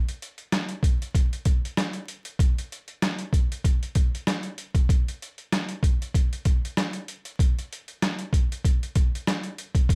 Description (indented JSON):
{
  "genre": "hip hop",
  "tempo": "96 BPM",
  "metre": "4/4",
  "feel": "swing 56% on 16ths",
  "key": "none",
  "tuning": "none",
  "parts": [
    { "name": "trip hop sampler-style drum kit", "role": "drums", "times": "0.1-9.9 s", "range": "hi-hat, kick drum, rim click, snare drum", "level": "-25 LUFS", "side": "equal", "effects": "none" }
  ],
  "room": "little or no reverb",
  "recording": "vinyl crackle",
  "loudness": "-26 LUFS",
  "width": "mono",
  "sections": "0.0-9.9 A section",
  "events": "none",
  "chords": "none"
}